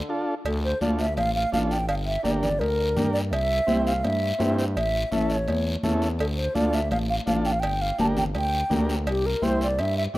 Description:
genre	latin, cumbia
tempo	167 BPM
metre	4/4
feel	straight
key	D minor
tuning	A4 = 439 Hz
part	growling FM bass	bass	0.0-10.2 s	G1 to G2	-27 LUFS	equal	none
part	combo organ	accompaniment	0.1-10.2 s	C4 to C5	-30 LUFS	right 1 dB	none
part	mellow hollow concert flute	melody	0.5-10.2 s	G4 to A5	-26 LUFS	equal	none
part	cowbell and timbales	percussion	0.5-10.0 s	none	-35 LUFS	right 3 dB	none
part	guiro	percussion	0.5-10.2 s	none	-38 LUFS	left 2 dB	none
part	congas	percussion	0.8-10.2 s	none	-28 LUFS	left 1 dB	none
room	light reverb, studio ambience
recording	rough home demo mix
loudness	-22 LUFS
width	side -17 dB against mid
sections	0.5-10.2 A section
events	none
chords	0.5 Dm; 1.9 Gm; 3.3 C; 4.8 A; 6.2 Dm; 7.6 Gm; 9.1 C

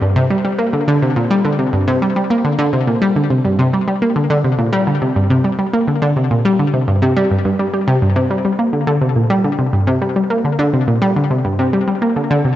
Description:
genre	ambient, sequencer-driven space music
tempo	105 BPM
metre	4/4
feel	straight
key	G minor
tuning	A4 = 440 Hz
part	analog pluck	solo	0.0-12.6 s	G2 to Bb3	-13 LUFS	equal	chorus, ping-pong delay
room	moderate plate reverb, RT60 3.4 s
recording	worn, warbling old tape, cassette tape, warbly pitch drift, nothing above 7.9 kHz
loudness	-13 LUFS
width	side -13 dB against mid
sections	0.0-8.0 A section; 8.0-12.6 B section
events	none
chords	none

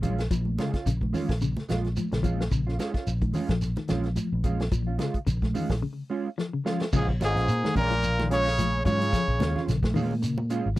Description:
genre	afrobeat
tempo	109 BPM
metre	4/4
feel	swing 55% on 16ths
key	Bb minor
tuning	A4 = 440 Hz
part	semi-hollow electric guitar	arpeggios	0.0-10.8 s	Db3 to Gb3	-32 LUFS	left 4 dB	tremolo, slapback echo
part	mellow electric guitar	stabs	0.0-10.7 s	Ab3 to F4	-31 LUFS	right 5 dB	ensemble chorus
part	fingered electric bass	bass	0.0-10.8 s	Ab1 to Bb2	-27 LUFS	equal	none
part	warm soul drum kit	drums	0.0-10.8 s	crash cymbal, hi-hat, kick drum, snare drum	-30 LUFS	equal	none
part	congas	percussion	0.0-10.8 s	none	-34 LUFS	right 3 dB	none
part	shekere	percussion	0.0-10.8 s	none	-35 LUFS	right 2 dB	none
part	brilliant trumpet	melody	7.0-9.6 s	Ab4 to Db5	-27 LUFS	equal	none
part	clear trombone section	second line	7.0-9.6 s	Ab2 to Db3	-32 LUFS	left 2 dB	none
room	little or no reverb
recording	none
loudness	-24 LUFS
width	side -17 dB against mid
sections	0.0-6.9 A section; 6.9-10.8 B section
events	break 5.8-6.9; drum fill 6.4-6.9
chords	0.0 Bbm7

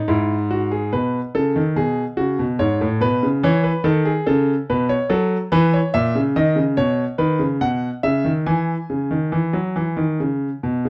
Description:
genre	classical, baroque-style two-part invention for grand piano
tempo	71 BPM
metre	3/4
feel	straight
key	E major from 5.9 s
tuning	A4 = 441 Hz
part	warm concert grand piano	solo	0.0-10.9 s	G#2 to G#5	-20 LUFS	equal	none
room	light reverb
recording	none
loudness	-20 LUFS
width	mono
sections	0.9-10.9 A section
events	none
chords	0.1 E/G#; 0.9 G#m/B; 2.6 G#madd11; 3.4 A; 5.1 F#m; 5.9 A#dim; 6.8 Badd9; 7.6 B; 8.5 E

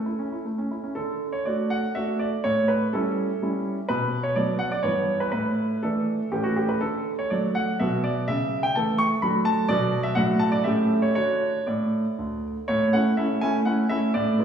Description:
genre	classical-period piano sonatina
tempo	115-128 BPM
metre	3/4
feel	rubato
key	D major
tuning	A4 = 441 Hz
part	clear concert grand piano	solo	0.0-14.4 s	D2 to C#6	-22 LUFS	right 1 dB	none
room	wet recital hall reverb, RT60 1.7 s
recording	heard from further back in the room, small room ambience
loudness	-22 LUFS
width	side -8 dB against mid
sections	1.0-12.7 A section; 12.7-14.4 B section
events	none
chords	0.0 A; 1.0 D; 2.5 A7; 3.9 Bm; 4.8 Em/G; 5.3 Asus4; 6.3 A; 6.8 D; 7.8 Bm; 8.3 A/C#; 9.2 D; 9.7 Bm; 10.2 D/A; 10.7 A7; 11.2 D; 12.7 A

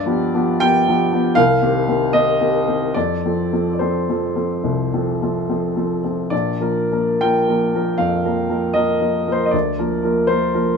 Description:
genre	classical, romantic character piece for solo piano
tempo	63-81 BPM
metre	4/4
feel	rubato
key	Bb major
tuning	A4 = 440 Hz
part	warm upright piano	solo	0.0-10.8 s	Bb1 to G5	-16 LUFS	equal	none
room	moderate small room reverb, RT60 0.5 s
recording	minimal, uncompressed stereo recording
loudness	-16 LUFS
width	side -5 dB against mid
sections	0.0-10.8 A section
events	none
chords	0.0 G7; 1.4 Cm; 2.9 F; 6.3 Bb; 9.5 Bb/D

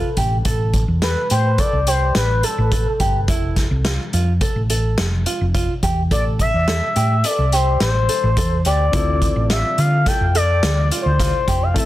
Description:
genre	progressive instrumental, band music in an uneven meter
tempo	106 BPM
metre	5/4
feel	straight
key	A minor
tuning	A4 = 440 Hz
part	expressive portamento lead	melody	0.0-11.9 s	A4 to G5	-21 LUFS	left 2 dB	chorus, plate reverb, digital delay
part	open-back banjo	arpeggios	0.0-11.9 s	E4 to A4	-26 LUFS	right 3 dB	plate reverb
part	hollow-body short-scale fingered electric bass	bass	0.2-11.9 s	F1 to D3	-19 LUFS	equal	none
part	vintage drum kit	drums	0.2-11.9 s	hi-hat, kick drum, snare drum	-22 LUFS	equal	none
part	warm grand piano	accompaniment	8.9-11.9 s	A3 to A4	-29 LUFS	left 5 dB	plate reverb
room	light reverb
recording	dense, heavily limited modern master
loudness	-16 LUFS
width	side -15 dB against mid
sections	0.0-11.9 A section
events	none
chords	0.5 Am; 3.3 Fmaj7; 6.1 Am; 8.9 Dm7

